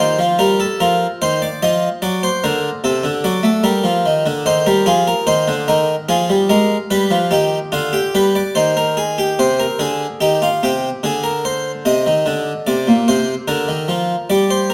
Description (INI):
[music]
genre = classical, baroque-style two-part invention for harpsichord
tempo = 73 BPM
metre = 3/4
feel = straight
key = C minor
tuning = A4 = 440 Hz
[part]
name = harpsichord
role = solo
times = 0.0-14.7 s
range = Bb2 to Eb5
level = -17 LUFS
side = equal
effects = none
[sound]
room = wet recital hall reverb, RT60 1.4 s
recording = close, detailed microphones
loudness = -17 LUFS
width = mono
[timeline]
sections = 0.0-9.4 A section; 9.4-14.7 B section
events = none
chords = 0.0 Gm; 1.2 Cm/Eb; 2.0 D; 3.6 Gm; 4.5 Cm/Eb; 6.1 Fm; 6.9 G; 8.6 Cm/Eb; 9.4 Cm; 11.0 Bb/D; 11.8 Cm9; 13.5 Bbadd11/D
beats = 0.38 1.19 | 2.01 2.82 3.64 | 4.46 5.28 6.09 | 6.92 7.74 8.56 | 9.39 10.21 11.03 | 11.85 12.66 13.48 | 14.29